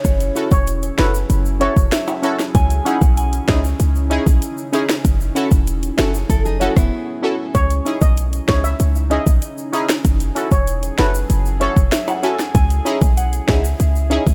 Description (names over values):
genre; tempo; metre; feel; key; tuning
dancehall; 96 BPM; 4/4; straight; C# minor; A4 = 440 Hz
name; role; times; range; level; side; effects
soft synth bell; second line; 0.0-4.4, 11.9-14.3 s; C#5 to G#5; -28 LUFS; equal; chorus, digital delay
deep dark ambient pad; sustained chords; 0.0-14.3 s; C#3 to A4; -31 LUFS; equal; chorus, built-in reverb, sidechain pumping
short 808-style bass; bass; 0.0-14.3 s; E1 to C#2; -20 LUFS; equal; none
afro-pop drum kit; drums; 0.0-14.3 s; hi-hat, kick drum, rim click, snare drum; -19 LUFS; equal; none
egg shaker and timbales; percussion; 0.0-14.3 s; none; -33 LUFS; equal; none
synth brass stab; accompaniment; 0.4-14.2 s; C#4 to A4; -24 LUFS; equal; chorus, phaser
steel pan; melody; 0.5-1.7, 7.5-11.7 s; B4 to E5; -25 LUFS; equal; digital delay
nylon-string guitar; arpeggios; 6.0-7.5 s; B3 to C#5; -26 LUFS; equal; none
room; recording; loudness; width
digital ambience; none; -17 LUFS; mono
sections
0.0-14.3 A section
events
break 6.9-7.5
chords
0.0 F#m7; 2.5 C#madd9; 5.0 F#m7; 7.5 C#madd9; 10.0 F#m7; 12.5 C#madd9